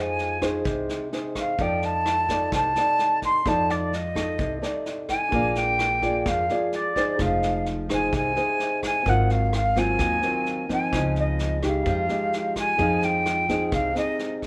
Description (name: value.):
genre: bossa nova.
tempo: 129 BPM.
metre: 4/4.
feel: straight.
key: F minor.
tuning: A4 = 440 Hz.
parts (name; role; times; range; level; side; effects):
jazz flute; melody; 0.0-14.4 s; D5 to C6; -27 LUFS; equal; none.
nylon-string guitar; accompaniment; 0.0-14.5 s; Ab2 to D5; -30 LUFS; equal; none.
upright bass; bass; 0.0-13.9 s; F1 to F2; -31 LUFS; equal; none.
vintage brush drum kit; drums; 0.2-14.5 s; kick drum, rim click, snare drum; -36 LUFS; equal; none.
warm grand piano; accompaniment; 5.3-14.5 s; C4 to F5; -37 LUFS; equal; none.
room: light reverb.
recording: none.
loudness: -24 LUFS.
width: mono.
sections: 0.0-12.8 A section; 12.8-14.5 A section.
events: none.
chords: 0.0 Fm7; 1.6 F6; 5.3 Bb7; 7.2 Fm7; 9.1 Ab13; 10.9 Dbmaj9; 11.9 Fm9; 12.8 Fm7.